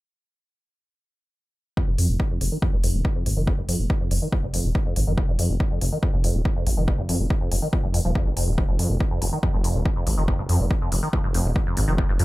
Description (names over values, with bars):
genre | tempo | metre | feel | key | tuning
driving peak-time techno | 141 BPM | 4/4 | straight | F minor | A4 = 440 Hz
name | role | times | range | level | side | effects
acid bass, saw | riff | 1.8-12.2 s | F2 to F3 | -28 LUFS | equal | wide subtle chorus, sidechain pumping, tape echo
electronic kick drum | drums | 1.8-12.1 s | none | -24 LUFS | equal | none
detuned saw bass | bass | 1.9-12.2 s | Eb1 to F2 | -24 LUFS | equal | sidechain pumping
electronic hi-hat | drums | 2.0-12.2 s | none | -31 LUFS | left 2 dB | sidechain pumping on hats
room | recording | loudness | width
little or no reverb | echo-heavy mix | -20 LUFS | side -19 dB against mid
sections
1.8-12.2 A section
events
filter sweep on acid bass 1.8-12.2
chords
1.8 F5